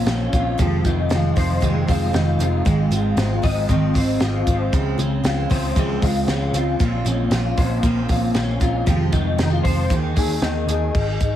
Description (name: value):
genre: jangly indie pop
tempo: 116 BPM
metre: 4/4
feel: straight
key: Ab major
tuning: A4 = 440 Hz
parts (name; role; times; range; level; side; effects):
- picked steel-string acoustic guitar; accompaniment; 0.0-11.0 s; F2 to Ab4; -25 LUFS; right 5 dB; none
- electric guitar through a small old amp; arpeggios; 0.0-11.4 s; Bb2 to Eb5; -22 LUFS; left 3 dB; ensemble chorus
- vintage muted picked electric bass; bass; 0.0-11.4 s; F1 to Eb2; -22 LUFS; equal; none
- compact cocktail drum kit; drums; 0.1-11.3 s; crash cymbal, hi-hat, kick drum, snare drum; -22 LUFS; equal; none
room: light reverb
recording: heavily compressed radio sound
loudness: -17 LUFS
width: side -11 dB against mid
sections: 0.0-10.9 A section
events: none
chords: 0.0 Bbmadd9; 0.6 Fm7; 2.7 Ab6; 4.7 Dbmaj7; 6.8 Bbmadd9; 8.9 Fm7; 9.9 Ebsus4